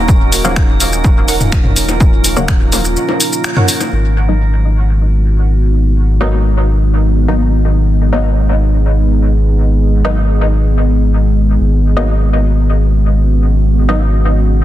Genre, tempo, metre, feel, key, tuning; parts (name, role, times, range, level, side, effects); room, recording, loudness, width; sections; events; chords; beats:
dub techno; 125 BPM; 4/4; straight; G# minor; A4 = 438 Hz
deep dark ambient pad; sustained chords; 0.0-14.6 s; G#3 to G#4; -19 LUFS; right 1 dB; chorus, built-in reverb, sidechain pumping
warm sub bass; bass; 0.0-14.6 s; D#1 to G#1; -12 LUFS; equal; sidechain pumping
drifting glass-harmonics texture; texture; 0.0-3.9 s; A#4; -25 LUFS; right 5 dB; chorus, built-in reverb, sidechain pumping
electronic kick drum; drums; 0.1-2.6 s; -11 LUFS; equal
punchy analog drum machine; drums; 0.1-3.9 s; finger snaps, hi-hat, shaker; -17 LUFS; left 1 dB; soft clipping on snare, dub echo
filtered dub chord stab; riff; 0.4-3.7 s; D#4 to F#5; -26 LUFS; right 4 dB; wide subtle chorus, sidechain pumping, dub echo
filtered dub chord stab; stabs; 0.4-14.0 s; C#3 to D#4; -21 LUFS; left 1 dB; chorus, phaser, sidechain pumping, dub echo
electronic toms and bongos; percussion; 1.4-3.9 s; -18 LUFS; left 2 dB; sidechain pumping on perc, sidechain pumping on toms
little or no reverb; dense, heavily limited modern master; -10 LUFS; side -13 dB against mid
0.0-3.9 A section; 3.9-14.6 B section
band accent 3.4
0.0 D#m7; 3.9 G#m7
| 0.08 0.56 1.04 1.52 | 2.00 2.48 2.96 3.44 | 3.92 4.40 4.88 5.36 | 5.84 6.32 6.80 7.28 | 7.76 8.24 8.72 9.20 | 9.68 10.16 10.64 11.12 | 11.60 12.08 12.56 13.04 | 13.52 14.00 14.48